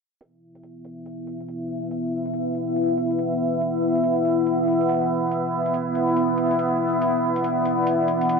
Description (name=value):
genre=deep dubstep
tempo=141 BPM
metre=4/4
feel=swing 62% on 16ths, half-time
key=unclear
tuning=A4 = 445 Hz
part: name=deep dark ambient pad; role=sustained chords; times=1.0-8.4 s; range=B3 to E5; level=-21 LUFS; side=equal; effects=chorus, built-in reverb
part: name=electronic hi-hat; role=drums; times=0.2-8.4 s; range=none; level=-49 LUFS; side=right 3 dB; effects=overdrive, studio reverb
room=wet echo chamber reverb, RT60 1.4 s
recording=low-pass filter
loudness=-20 LUFS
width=side -4 dB against mid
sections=0.2-8.4 A section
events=filter sweep 0.2-8.4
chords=0.2 E5